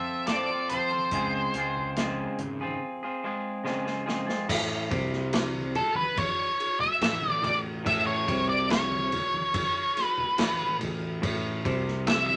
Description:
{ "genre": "psychedelic rock", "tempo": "71 BPM", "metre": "4/4", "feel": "straight", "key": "unclear", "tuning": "A4 = 439 Hz", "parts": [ { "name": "octave-fuzz lead guitar", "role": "melody", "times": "0.0-12.4 s", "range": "A4 to E5", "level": "-29 LUFS", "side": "equal", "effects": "distortion" }, { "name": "twangy electric guitar", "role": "riff", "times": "0.0-12.4 s", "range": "A2 to A4", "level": "-34 LUFS", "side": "equal", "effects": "none" }, { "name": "fuzz picked electric bass", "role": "bass", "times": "0.3-12.4 s", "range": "G#1 to F3", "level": "-37 LUFS", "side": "equal", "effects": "overdrive" }, { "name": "vintage drum kit", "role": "drums", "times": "0.3-12.3 s", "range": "crash cymbal, hi-hat, kick drum, snare drum", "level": "-33 LUFS", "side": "equal", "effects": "none" }, { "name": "congas", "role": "percussion", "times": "0.7-12.4 s", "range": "none", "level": "-44 LUFS", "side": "equal", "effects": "none" } ], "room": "moderate studio reverb, RT60 0.6 s", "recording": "nothing above 11.0 kHz", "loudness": "-28 LUFS", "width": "mono", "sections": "0.0-4.5 A section; 4.5-12.4 B section", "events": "break 2.8-4.5; drum fill 3.7-4.5; lead electric guitar solo 4.5-12.4", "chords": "0.0 F; 1.1 C#maj7; 4.5 A", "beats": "0.27 | 1.12 1.96 2.81 3.65 | 4.50 5.34 6.18 7.03 | 7.87 8.71 9.55 10.39 | 11.23 12.07" }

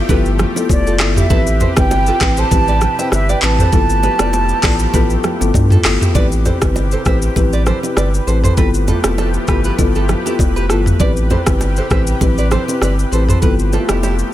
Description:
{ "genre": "afrobeats", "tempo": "99 BPM", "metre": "4/4", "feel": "swing 55% on 16ths", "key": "A minor", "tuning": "A4 = 439 Hz", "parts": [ { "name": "mellow silver concert flute", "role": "melody", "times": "0.0-5.8 s", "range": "D5 to A5", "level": "-20 LUFS", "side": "right 3 dB", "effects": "ping-pong delay" }, { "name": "marimba with medium mallets", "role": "accompaniment", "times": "0.0-14.3 s", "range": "B3 to B4", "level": "-20 LUFS", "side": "left 4 dB", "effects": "none" }, { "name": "lush unison pad", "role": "sustained chords", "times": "0.0-14.3 s", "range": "C3 to B4", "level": "-25 LUFS", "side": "left 1 dB", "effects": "chorus" }, { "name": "nylon-string guitar", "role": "riff", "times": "0.1-14.1 s", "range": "E4 to E5", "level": "-24 LUFS", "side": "right 4 dB", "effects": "ping-pong delay" }, { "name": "saturated sub bass", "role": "bass", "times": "0.1-14.2 s", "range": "F1 to G2", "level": "-16 LUFS", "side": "equal", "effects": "none" }, { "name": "afro-pop drum kit", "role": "drums", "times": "0.1-14.3 s", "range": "handclaps, hi-hat, kick drum, rim click, shaker, toms", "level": "-16 LUFS", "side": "equal", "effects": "vintage 12-bit sampler grit" }, { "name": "bongos and congas", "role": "percussion", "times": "0.1-14.2 s", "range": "none", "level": "-24 LUFS", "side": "right 6 dB", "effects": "none" } ], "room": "small room ambience", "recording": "none", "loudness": "-12 LUFS", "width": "side -13 dB against mid", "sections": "0.0-6.2 A section; 6.2-14.3 B section", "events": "none", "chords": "0.0 G13; 1.3 Am9; 3.7 G13; 6.2 Am9; 8.6 G13; 11.0 Am9; 13.4 G13", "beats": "0.09 0.70 | 1.30 1.91 2.51 3.12 | 3.73 4.33 4.94 5.54 | 6.15 6.76 7.36 7.97 | 8.57 9.18 9.79 10.39 | 11.00 11.61 12.21 12.82 | 13.42 14.03" }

